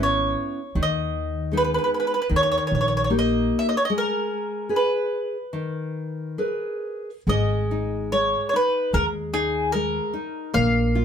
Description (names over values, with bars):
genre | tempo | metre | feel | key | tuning
fado-style ballad | 68-78 BPM | 4/4 | rubato | G# harmonic minor | A4 = 441 Hz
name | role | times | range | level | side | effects
mandolin | melody | 0.0-11.0 s | G#4 to E#5 | -24 LUFS | right 1 dB | none
nylon-string guitar | accompaniment | 0.0-11.0 s | D#3 to B4 | -26 LUFS | left 2 dB | none
upright bass | bass | 0.0-11.0 s | G#1 to D#2 | -26 LUFS | right 1 dB | none
room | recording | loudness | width
moderate studio reverb, RT60 0.6 s | band playing live in one room | -21 LUFS | side -8 dB against mid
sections
0.0-7.3 A section; 7.3-11.0 B section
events
break 3.9-7.3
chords
0.0 C#m7; 0.7 G#m/D#; 2.3 D#; 3.9 G#madd9; 7.3 G#sus2; 10.5 A#5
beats
| 0.74 1.52 2.31 3.11 | 3.90 4.70 5.53 6.39 | 7.27 8.12 8.93 9.73 | 10.54